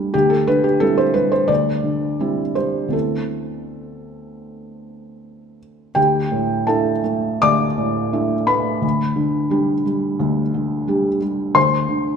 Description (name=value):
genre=neoclassical minimalist piano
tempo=77-90 BPM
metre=4/4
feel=rubato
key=unclear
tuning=A4 = 443 Hz
part: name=felt-muted upright piano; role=solo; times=0.0-12.2 s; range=D2 to D6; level=-16 LUFS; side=equal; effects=none
room=moderate concert hall reverb, RT60 1.9 s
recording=minimal, uncompressed stereo recording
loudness=-16 LUFS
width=side -6 dB against mid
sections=0.0-6.0 A section; 6.0-12.2 B section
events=none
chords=0.1 Cadd9/D; 2.9 Amadd9/D; 6.0 Dsus2; 8.8 G/D; 11.6 Csus2/D